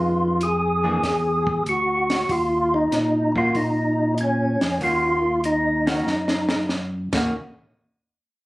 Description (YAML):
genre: soul jazz organ trio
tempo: 95 BPM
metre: 4/4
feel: swing 69% on 8ths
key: Eb minor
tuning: A4 = 439 Hz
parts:
  - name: percussive tonewheel organ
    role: melody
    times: 0.0-6.7 s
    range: Db4 to Ab4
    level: -21 LUFS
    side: equal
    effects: slow rotary speaker, overdrive, chorus vibrato
  - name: hollow-body jazz guitar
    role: accompaniment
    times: 0.0-7.3 s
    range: Eb3 to Ab4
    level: -26 LUFS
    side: equal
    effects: none
  - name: tonewheel organ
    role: bass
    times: 0.0-7.3 s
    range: D2 to Bb2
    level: -26 LUFS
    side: equal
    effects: overdrive, chorus vibrato, slow rotary speaker
  - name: compact cocktail drum kit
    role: drums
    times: 0.4-7.2 s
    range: crash cymbal, hi-hat, kick drum, snare drum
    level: -26 LUFS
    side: equal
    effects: none
room: light reverb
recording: recorded on a phone in the room, studio ambience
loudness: -19 LUFS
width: side -19 dB against mid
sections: 0.0-7.3 A section; 7.3-8.5 B section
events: drum fill 6.1-6.7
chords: 0.0 Fm7b5; 1.0 E7; 2.3 Ebm7; 7.3 N.C.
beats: 0.40 1.03 1.66 | 2.29 2.92 3.55 4.18 | 4.81 5.44 6.07 6.70